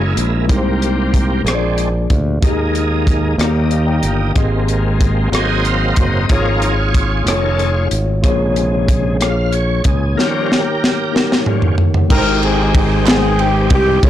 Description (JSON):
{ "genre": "slow gospel", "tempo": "62 BPM (dotted quarters)", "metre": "6/8", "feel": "straight", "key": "Ab major", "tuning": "A4 = 440 Hz", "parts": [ { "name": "mellow tine electric piano", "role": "accompaniment", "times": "0.0-14.1 s", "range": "Ab2 to Bb5", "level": "-20 LUFS", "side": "left 3 dB", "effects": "medium stereo tremolo, plate reverb" }, { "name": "bright tonewheel organ", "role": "sustained chords", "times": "0.0-14.1 s", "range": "C3 to Ab5", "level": "-20 LUFS", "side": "right 2 dB", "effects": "slow rotary speaker, overdrive, chorus vibrato, plate reverb" }, { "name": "modern bright fingered electric bass", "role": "bass", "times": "0.0-14.1 s", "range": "F1 to Eb2", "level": "-17 LUFS", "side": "equal", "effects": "transformer saturation" }, { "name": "tight funk drum kit", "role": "drums", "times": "0.2-14.1 s", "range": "crash cymbal, hi-hat, kick drum, ride cymbal, rim click, snare drum, toms", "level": "-16 LUFS", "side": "equal", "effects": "soft clipping on snare" }, { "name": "warm horn section", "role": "melody", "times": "12.1-14.1 s", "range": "Eb4 to Bb4", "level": "-17 LUFS", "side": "equal", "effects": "plate reverb" }, { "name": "group handclap", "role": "percussion", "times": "13.1-13.4 s", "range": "none", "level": "-26 LUFS", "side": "right 7 dB", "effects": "none" } ], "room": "moderate large studio reverb, RT60 0.8 s, studio reverb", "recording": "blown-out, overdriven recording, overdrive", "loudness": "-13 LUFS", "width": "side -12 dB against mid", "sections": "0.0-12.1 A section; 12.1-14.1 B section", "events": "tonewheel organ solo 0.0-12.1; tine electric piano fill 3.4-4.4; drum fill 10.2-12.1", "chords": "0.5 Abmaj7/C; 1.5 Bb7; 2.4 Ebsus4; 3.4 Eb; 4.4 Abmaj7; 5.3 Ab7; 6.3 Db6/Ab; 7.3 F7alt; 8.2 Bbm7; 10.2 Eb7; 12.1 Abmaj7", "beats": "| 0.49 1.46 | 2.43 3.40 | 4.37 5.33 | 6.30 7.27 | 8.24 9.20 | 10.17 11.14 | 12.10 13.07 | 14.03" }